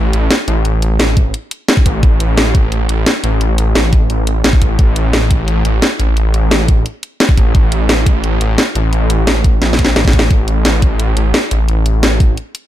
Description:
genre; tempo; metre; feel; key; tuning
dark technical drum and bass; 174 BPM; 4/4; straight; unclear; A4 = 439 Hz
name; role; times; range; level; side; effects
wide detuned saw bass; bass; 0.0-12.4 s; A1 to Bb1; -13 LUFS; equal; chorus, sidechain pumping
drum and bass drum kit; drums; 0.1-12.6 s; hi-hat, snare drum; -15 LUFS; equal; none
electronic kick drum; drums; 1.2-12.3 s; none; -11 LUFS; equal; none
room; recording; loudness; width
digital ambience; dark, warm production; -10 LUFS; side -13 dB against mid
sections
0.0-12.7 A section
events
drum fill 9.6-10.3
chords
none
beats
0.31 | 0.65 1.00 1.34 1.69 | 2.03 2.38 2.72 3.06 | 3.41 3.75 4.10 4.44 | 4.79 5.13 5.48 5.82 | 6.17 6.51 6.86 7.20 | 7.55 7.89 8.24 8.58 | 8.93 9.27 9.62 9.96 | 10.31 10.65 11.00 11.34 | 11.69 12.03 12.38

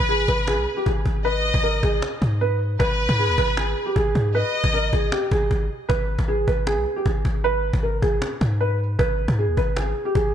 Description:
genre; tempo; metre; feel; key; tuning
hip hop, trap; 155 BPM; 4/4; half-time; G# harmonic minor; A4 = 437 Hz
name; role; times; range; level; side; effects
felt-muted upright piano; melody; 0.0-10.3 s; G4 to B4; -24 LUFS; right 1 dB; analog chorus, low-pass filter
warm symphonic violin section; second line; 0.0-5.1 s; B4 to D#5; -25 LUFS; left 1 dB; ping-pong delay
warm 808-style bass; bass; 0.0-10.3 s; G#1 to G#2; -22 LUFS; equal; none
cajon; drums; 0.1-10.2 s; none; -29 LUFS; equal; vintage 12-bit sampler grit
room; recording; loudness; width
light reverb, small room ambience; bright 1980s-style digital production; -19 LUFS; side -9 dB against mid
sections
0.0-10.3 A section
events
none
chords
0.0 G#m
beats
0.09 0.48 0.86 | 1.25 1.64 2.02 2.41 | 2.80 3.19 3.57 3.96 | 4.35 4.73 5.12 5.51 | 5.89 6.28 6.67 7.06 | 7.44 7.83 8.22 8.61 | 8.99 9.38 9.77 10.15

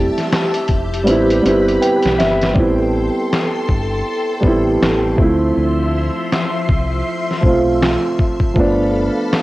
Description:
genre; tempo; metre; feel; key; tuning
lo-fi hip hop; 80 BPM; 4/4; swing 60% on 16ths; A minor; A4 = 439 Hz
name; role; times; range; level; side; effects
dark upright piano; accompaniment; 0.0-9.4 s; F3 to G5; -16 LUFS; right 1 dB; cassette tape
string machine, violins; sustained chords; 0.0-9.4 s; F3 to C6; -22 LUFS; left 1 dB; ensemble chorus, cassette tape
deep dub fingered electric bass; bass; 0.0-9.1 s; F1 to D2; -21 LUFS; equal; none
lo-fi sampler-style drum kit; drums; 0.2-9.4 s; handclaps, hi-hat, kick drum, snare drum; -18 LUFS; equal; cassette tape
room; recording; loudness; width
light reverb; home recording on cassette; -14 LUFS; side -18 dB against mid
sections
0.0-2.6 A section; 2.6-9.4 B section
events
drum fill 1.1-2.6; hi-hats muted 2.6-9.4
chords
0.0 Fmaj9; 1.1 Am9; 5.2 Dm9; 8.6 G9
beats
0.31 1.06 1.81 | 2.56 3.31 4.06 4.81 | 5.56 6.31 7.06 7.81 | 8.56 9.31

